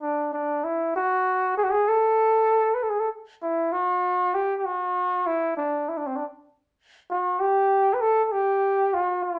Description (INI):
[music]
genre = persian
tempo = 65 BPM (dotted quarters)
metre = 6/8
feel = straight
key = unclear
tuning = A4 = 441 Hz
[part]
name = trumpet with bucket mute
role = solo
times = 0.0-9.4 s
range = C4 to B4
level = -24 LUFS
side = equal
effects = none
[sound]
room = wet small room reverb, RT60 0.6 s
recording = nothing above 10.5 kHz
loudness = -24 LUFS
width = mono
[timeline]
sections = 0.0-3.7 A section; 3.7-9.4 B section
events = none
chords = none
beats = | 0.02 0.94 | 1.87 2.79 | 3.71 4.63 | 5.55 6.47 | 7.40 8.32 | 9.24